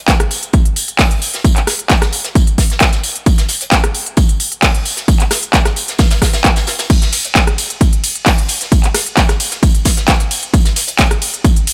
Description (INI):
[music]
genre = techno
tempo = 132 BPM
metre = 4/4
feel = straight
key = none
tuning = none
[part]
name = electronic kick drum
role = drums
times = 0.1-11.5 s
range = none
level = -14 LUFS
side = equal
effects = overdrive, studio reverb
[part]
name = jazz brush drum kit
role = drums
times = 0.1-11.7 s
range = hi-hat, snare drum, tambourine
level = -25 LUFS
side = equal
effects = sidechain pumping on hats, high-pass filter on hats, studio reverb, high-pass filter on snare, sidechain pumping on perc, high-pass filter on perc, high-pass filter on room
[part]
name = techno drum kit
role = drums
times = 0.1-11.7 s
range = crash cymbal, handclaps, hi-hat, ride cymbal, rim click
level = -18 LUFS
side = equal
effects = overdrive, studio reverb
[sound]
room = small room ambience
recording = none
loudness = -14 LUFS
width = mono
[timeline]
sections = 0.0-11.7 A section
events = none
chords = none